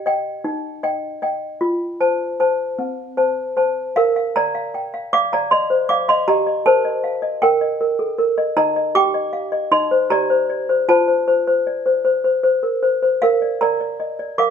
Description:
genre	classical, lullaby for toy piano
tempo	52 BPM (dotted quarters)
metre	6/8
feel	straight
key	Bb major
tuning	A4 = 437 Hz
part	toy piano	solo	0.1-14.5 s	C4 to D6	-16 LUFS	equal	none
room	little or no reverb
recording	close, detailed microphones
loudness	-16 LUFS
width	side -7 dB against mid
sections	0.0-4.0 A section; 4.0-14.5 B section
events	none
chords	0.4 Eb; 1.6 F; 4.0 Bb; 6.3 Eb/G; 8.6 Eb; 9.7 Cm/Eb; 10.9 F (rootless); 13.2 Bb

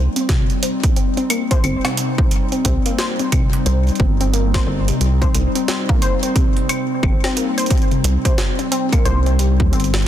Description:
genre	IDM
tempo	89 BPM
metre	4/4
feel	swing 62% on 16ths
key	C minor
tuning	A4 = 440 Hz
part	warbly tape-like pad	sustained chords	0.0-10.1 s	G3 to Eb4	-24 LUFS	left 2 dB	chorus, built-in reverb
part	warbly dusty pluck	arpeggios	0.0-9.9 s	C3 to C5	-22 LUFS	left 2 dB	chorus, tape echo
part	rubbery square bass	bass	0.0-10.1 s	G1 to Eb2	-17 LUFS	equal	tube saturation
part	jungle sampler-style drum kit	drums	0.2-10.1 s	claves, hi-hat, snare drum	-24 LUFS	right 2 dB	ping-pong delay
part	electronic kick drum	drums	0.3-9.7 s	none	-17 LUFS	equal	none
room	little or no reverb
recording	dense, heavily limited modern master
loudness	-15 LUFS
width	side -11 dB against mid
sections	0.0-10.1 A section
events	none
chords	0.0 Cm

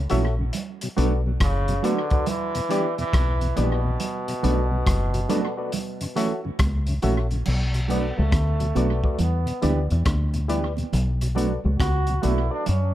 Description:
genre	roots reggae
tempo	69 BPM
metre	4/4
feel	swing 64% on 16ths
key	B minor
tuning	A4 = 444 Hz
part	bright trombone	melody	0.0-12.9 s	A2 to F#4	-29 LUFS	right 1 dB	tape echo
part	deep dub fingered electric bass	bass	0.0-12.9 s	F#1 to F#2	-22 LUFS	equal	none
part	mellow electric guitar	accompaniment	0.1-12.4 s	E3 to G4	-30 LUFS	right 8 dB	tape echo
part	mellow tonewheel organ	accompaniment	0.1-12.3 s	E2 to E4	-30 LUFS	left 1 dB	chorus vibrato, slow rotary speaker
part	barky reed electric piano	stabs	0.1-12.6 s	E4 to E5	-30 LUFS	left 4 dB	overdrive, fast tremolo
part	crunchy breakbeat drum kit	drums	0.1-12.9 s	crash cymbal, hi-hat, kick drum, rim click	-28 LUFS	equal	analog delay
part	congas	percussion	0.5-12.9 s	none	-33 LUFS	right 8 dB	none
room	small room ambience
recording	echo-heavy mix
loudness	-21 LUFS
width	side -13 dB against mid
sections	0.0-7.5 A section; 7.5-12.9 B section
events	trombone solo 7.5-12.9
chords	0.0 F#m7; 0.5 Bm7; 2.3 Em7; 4.0 Bm7; 5.7 F#m7; 7.5 Bm7; 9.2 Em7; 10.9 Bm7

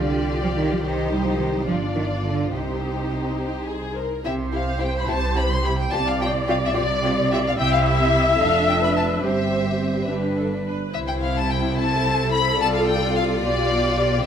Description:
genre	quick classical-period movement for string orchestra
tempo	72 BPM (dotted quarters)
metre	6/8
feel	straight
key	C minor, C major from 4.3 s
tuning	A4 = 439 Hz
part	warm studio violin section	melody	0.0-14.2 s	C5 to C6	-26 LUFS	left 3 dB	none
part	warm studio violin section	second line	0.0-14.3 s	C4 to D5	-27 LUFS	left 2 dB	none
part	warm studio viola section	accompaniment	0.0-14.2 s	D4 to E5	-25 LUFS	left 1 dB	none
part	clear studio double bass section	bass	0.0-14.2 s	F1 to C2	-26 LUFS	right 2 dB	none
part	rich studio cello section	bass	0.0-14.2 s	F2 to G3	-26 LUFS	right 2 dB	none
room	moderate scoring stage reverb, RT60 1.6 s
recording	none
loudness	-19 LUFS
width	side -8 dB against mid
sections	0.0-4.3 A section; 4.3-14.3 A section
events	none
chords	0.0 G5/C; 0.8 Cm; 1.7 G5; 2.5 Cm; 4.3 C; 5.9 G5/C; 7.6 C; 8.4 Dm/F; 9.2 C/G; 10.1 G; 10.9 C; 12.6 G7/C

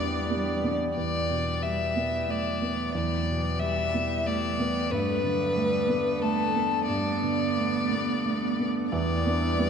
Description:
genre	neoclassical piano and strings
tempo	90 BPM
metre	3/4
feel	rubato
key	E minor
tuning	A4 = 440 Hz
part	rich violin	melody	0.0-9.7 s	A4 to E5	-28 LUFS	left 4 dB	none
part	rich cello	second line	0.0-9.7 s	E3 to B3	-34 LUFS	right 6 dB	none
part	dark baby grand piano	accompaniment	0.0-9.7 s	E2 to D4	-28 LUFS	right 2 dB	none
part	hand-pumped harmonium	sustained chords	0.0-9.7 s	B3 to G5	-37 LUFS	right 1 dB	none
part	buzzing marimba with medium hard mallets	arpeggios	8.9-9.5 s	E4 to B4	-36 LUFS	right 6 dB	none
room	wet cathedral reverb, RT60 4.2 s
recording	recorded in a church or concert hall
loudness	-24 LUFS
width	side -6 dB against mid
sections	1.0-8.9 A section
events	none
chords	0.0 Em7; 4.9 Gadd9; 8.9 Em7

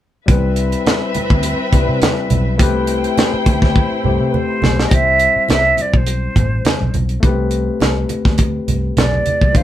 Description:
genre	lush 1970s-style soul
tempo	104 BPM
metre	4/4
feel	swing 54% on 16ths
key	C major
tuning	A4 = 440 Hz
part	warm studio violin section	second line	0.3-4.9 s	C4 to G5	-22 LUFS	left 2 dB	none
part	barky tine electric piano	accompaniment	0.3-9.6 s	E3 to C5	-21 LUFS	left 5 dB	overdrive
part	vintage muted fingered electric bass	bass	0.3-9.6 s	A1 to C3	-19 LUFS	equal	none
part	tight funk drum kit	drums	0.3-9.6 s	hi-hat, kick drum, snare drum	-15 LUFS	equal	none
part	congas	percussion	0.3-9.6 s	none	-23 LUFS	right 4 dB	none
part	concert flute	melody	4.3-9.6 s	B4 to F5	-16 LUFS	right 2 dB	none
room	moderate studio ambience, RT60 0.5 s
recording	band playing live in one room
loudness	-13 LUFS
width	side -12 dB against mid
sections	0.3-4.9 A section; 4.9-9.6 B section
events	drum fill 3.8-4.9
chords	0.3 Cmaj7; 2.6 Am9/C; 4.9 Cmaj7; 7.2 Am9/C

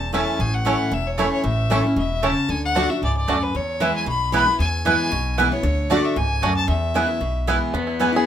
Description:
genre	bluegrass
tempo	229 BPM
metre	4/4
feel	straight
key	E mixolydian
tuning	A4 = 440 Hz
part	clear fiddle	melody	0.0-7.6 s	B4 to B5	-25 LUFS	left 2 dB	none
part	picked steel-string acoustic guitar	accompaniment	0.0-8.3 s	E2 to F#4	-23 LUFS	equal	none
part	upright bass	bass	0.0-8.1 s	E1 to E2	-25 LUFS	equal	none
part	bluegrass banjo	melody	0.1-8.3 s	A3 to G#4	-26 LUFS	right 1 dB	none
part	mandolin	stabs	0.1-8.1 s	A3 to A5	-23 LUFS	right 5 dB	none
part	rich fiddle	second line	7.7-8.3 s	B3	-24 LUFS	left 6 dB	none
room	moderate small room reverb, RT60 0.5 s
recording	minimal, uncompressed stereo recording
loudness	-18 LUFS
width	side -10 dB against mid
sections	0.0-7.7 A section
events	none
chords	0.0 A; 2.5 D; 3.5 E; 5.6 D; 6.7 E

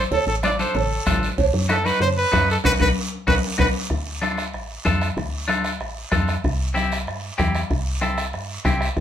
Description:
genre	latin, cumbia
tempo	190 BPM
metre	4/4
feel	straight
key	D dorian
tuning	A4 = 440 Hz
part	clear trumpet	melody	0.0-3.7 s	A4 to D5	-22 LUFS	equal	none
part	clean electric guitar	accompaniment	0.0-8.9 s	C4 to B4	-24 LUFS	left 1 dB	none
part	woody FM bass	bass	0.0-9.0 s	A1 to G2	-25 LUFS	equal	none
part	bombo	percussion	0.1-9.0 s	none	-26 LUFS	left 1 dB	none
part	congas	percussion	0.1-9.0 s	none	-28 LUFS	left 3 dB	none
part	cowbell and timbales	percussion	0.1-3.7 s	none	-26 LUFS	right 6 dB	none
part	guiro	percussion	0.1-9.0 s	none	-33 LUFS	right 4 dB	none
room	moderate studio ambience, RT60 0.5 s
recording	band playing live in one room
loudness	-19 LUFS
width	side -10 dB against mid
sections	0.0-3.9 A section; 3.9-9.0 B section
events	band accent 2.6-3.9; drum fill 3.0-3.9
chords	0.0 Dm; 1.4 B; 3.9 Dm; 6.4 C

